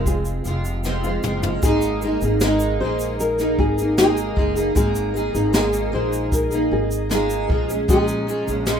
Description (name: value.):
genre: acoustic pop.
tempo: 77 BPM.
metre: 4/4.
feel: straight.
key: Ab major.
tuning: A4 = 438 Hz.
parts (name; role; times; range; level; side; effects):
nylon-string guitar; melody; 0.0-8.8 s; F4 to C5; -24 LUFS; left 2 dB; none.
fingerpicked steel-string acoustic guitar; accompaniment; 0.0-8.8 s; F2 to Ab4; -21 LUFS; right 1 dB; double-tracked left and right.
upright bass; bass; 0.0-8.8 s; F1 to Bb1; -25 LUFS; equal; none.
jazz brush drum kit; drums; 0.1-8.8 s; kick drum, shaker, snare drum, toms; -23 LUFS; equal; none.
egg shaker; percussion; 0.1-8.8 s; none; -36 LUFS; right 2 dB; none.
glassy FM pad; sustained chords; 1.6-8.8 s; Db4 to Bb5; -32 LUFS; equal; ensemble chorus, built-in reverb.
room: light reverb.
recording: rough home demo mix.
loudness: -18 LUFS.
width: side -8 dB against mid.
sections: 0.0-1.6 A section; 1.6-8.8 B section.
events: drum fill 0.8-1.6.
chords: 0.0 Fm; 1.6 Absus2; 7.5 Bbm7.